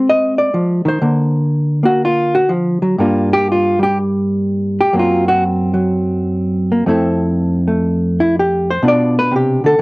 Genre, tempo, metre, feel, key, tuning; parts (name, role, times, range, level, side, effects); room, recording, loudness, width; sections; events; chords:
solo jazz; 123 BPM; 4/4; swing 66% on 8ths; F major; A4 = 442 Hz
hollow-body jazz guitar; solo; 0.0-9.8 s; F2 to Eb5; -13 LUFS; equal; cassette tape
light reverb; home recording on cassette; -13 LUFS; side -24 dB against mid
0.0-9.8 A section
hollow-body jazz guitar solo 0.0-9.8
0.0 Ab; 1.0 Daug; 3.0 Gm7; 4.9 Gb; 6.9 Fmaj7; 8.8 Bdim